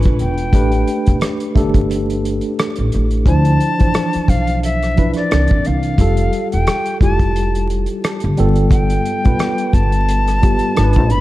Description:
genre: R&B, neo-soul.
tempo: 88 BPM.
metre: 4/4.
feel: swing 54% on 16ths.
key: unclear.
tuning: A4 = 439 Hz.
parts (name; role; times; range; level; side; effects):
tine electric piano; accompaniment; 0.0-11.2 s; E3 to A5; -19 LUFS; equal; overdrive, fast stereo tremolo.
warm soul drum kit; drums; 0.0-11.2 s; hi-hat, kick drum, rim click; -16 LUFS; equal; none.
upright bass; bass; 0.1-11.2 s; E1 to D2; -17 LUFS; equal; none.
silver concert flute; melody; 0.2-11.2 s; D5 to B5; -22 LUFS; left 2 dB; none.
room: light reverb, studio ambience.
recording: dark, warm production, vinyl crackle.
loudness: -13 LUFS.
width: side -16 dB against mid.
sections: 0.0-11.2 A section.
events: tine electric piano fill 7.7-8.7.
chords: 0.0 G#dim7; 0.5 A9sus4; 3.3 Dm9; 5.3 C9; 6.0 Fmaj9; 8.4 G9.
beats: | 0.53 1.21 1.89 2.58 | 3.26 3.94 4.62 5.30 | 5.99 6.67 7.35 8.03 | 8.71 9.39 10.08 10.76.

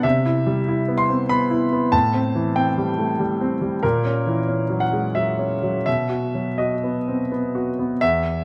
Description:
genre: classical, romantic character piece for solo piano.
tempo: 83-97 BPM.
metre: 3/4.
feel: rubato.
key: unclear.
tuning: A4 = 440 Hz.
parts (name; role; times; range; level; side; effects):
clear grand piano; solo; 0.0-8.4 s; E2 to C6; -21 LUFS; equal; none.
room: wet recital hall reverb, RT60 1.3 s.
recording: none.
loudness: -21 LUFS.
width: mono.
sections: 0.0-8.0 A section.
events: none.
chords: 0.0 Cmaj7; 1.9 Am7; 3.8 F#7/A#; 5.9 B.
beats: | 0.04 0.68 1.31 | 1.93 2.56 3.20 | 3.83 4.48 5.16 | 5.86 6.58 7.30 | 8.01.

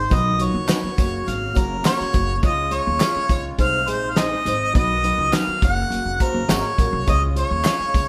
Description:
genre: uptempo 1960s-style soul.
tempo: 103 BPM.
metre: 4/4.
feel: straight.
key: Db major.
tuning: A4 = 438 Hz.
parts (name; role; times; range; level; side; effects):
warm harmonica; melody; 0.0-8.1 s; Bb4 to Gb5; -24 LUFS; equal; none.
reed electric piano; accompaniment; 0.0-8.1 s; Gb3 to Eb5; -31 LUFS; equal; fast tremolo.
accordion; sustained chords; 0.0-8.1 s; C3 to Gb4; -36 LUFS; equal; none.
upright bass; bass; 0.0-8.1 s; F1 to Eb2; -28 LUFS; equal; none.
cloth-damped thuddy drum kit; drums; 0.1-8.1 s; hi-hat, kick drum, snare drum; -24 LUFS; equal; none.
tambourine and handclaps; percussion; 0.1-8.1 s; none; -36 LUFS; equal; none.
electric guitar through a small old amp; stabs; 0.7-7.8 s; Db4 to Db5; -32 LUFS; equal; none.
room: moderate stone room reverb, RT60 1.1 s.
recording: band playing live in one room.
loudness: -20 LUFS.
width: mono.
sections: 0.0-8.1 A section.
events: none.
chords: 0.1 Cb; 1.0 Gb; 2.4 Db; 3.6 Ab; 4.8 Cb; 5.6 Gb; 7.1 Db.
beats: | 0.11 0.69 1.27 1.85 | 2.43 3.01 3.60 4.18 | 4.76 5.34 5.92 6.50 | 7.08 7.66.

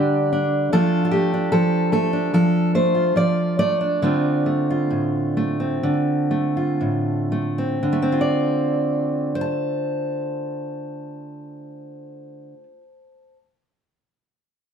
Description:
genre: folk, solo fingerstyle acoustic guitar.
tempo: 58-75 BPM.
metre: 4/4.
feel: rubato.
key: D minor.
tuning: A4 = 440 Hz.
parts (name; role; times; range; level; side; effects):
fingerpicked steel-string acoustic guitar; solo; 0.0-13.4 s; A2 to A5; -19 LUFS; right 1 dB; slapback echo.
room: moderate studio reverb, RT60 0.7 s.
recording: none.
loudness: -18 LUFS.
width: side -7 dB against mid.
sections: 0.0-7.8 A section; 7.8-11.9 B section.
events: slowing down 0.7-7.8.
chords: 0.0 G5; 0.7 Dm/F; 4.0 Dm7.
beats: | 0.73 1.53 2.34 3.17 | 4.02 4.90 5.81 6.79 | 7.81 8.84 9.85 10.85.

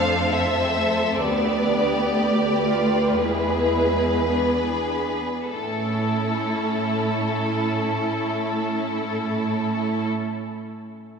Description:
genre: classical, slow romantic movement for string orchestra.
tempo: 47-70 BPM.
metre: 4/4.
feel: rubato.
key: unclear.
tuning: A4 = 441 Hz.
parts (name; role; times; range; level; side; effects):
rich studio violin section; melody; 0.0-10.1 s; A4 to F5; -27 LUFS; left 2 dB; none.
rich studio violin section; second line; 0.0-10.1 s; E4 to C5; -25 LUFS; equal; none.
rich studio viola section; accompaniment; 0.0-10.1 s; G#3 to G4; -28 LUFS; right 1 dB; none.
rich studio cello section; bass; 0.0-10.1 s; D2 to A2; -27 LUFS; right 2 dB; none.
room: wet church reverb, RT60 3.2 s.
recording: minimal, uncompressed stereo recording.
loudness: -20 LUFS.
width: side -6 dB against mid.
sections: 0.0-5.5 A section; 5.5-10.4 B section.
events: slowing down 0.0-5.5.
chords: 0.0 Fmaj7; 1.2 Bdim/D; 3.2 E7; 5.5 A.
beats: 0.33 | 1.23 2.18 3.20 4.32 | 5.54 6.73 7.92 9.13.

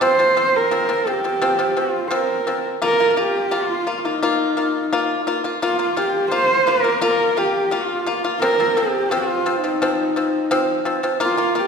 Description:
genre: mongolian traditional, Mongolian folk.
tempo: 86 BPM.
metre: 4/4.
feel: straight.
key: Bb zhi mode.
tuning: A4 = 440 Hz.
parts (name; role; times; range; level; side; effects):
warm horsehead fiddle; melody; 0.0-11.7 s; Eb4 to C5; -19 LUFS; right 1 dB; none.
pipa; arpeggios; 0.0-11.7 s; F3 to F4; -20 LUFS; left 1 dB; none.
room: wet scoring stage reverb, RT60 1.6 s.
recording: recorded in a church or concert hall.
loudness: -17 LUFS.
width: side -6 dB against mid.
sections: 0.0-2.8 A section; 2.8-11.7 B section.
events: none.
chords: 0.0 F5; 2.8 Bb5; 8.4 F5.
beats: | 0.02 0.72 1.42 2.12 | 2.82 3.52 4.22 4.92 | 5.62 6.32 7.02 7.72 | 8.42 9.12 9.81 10.51 | 11.21.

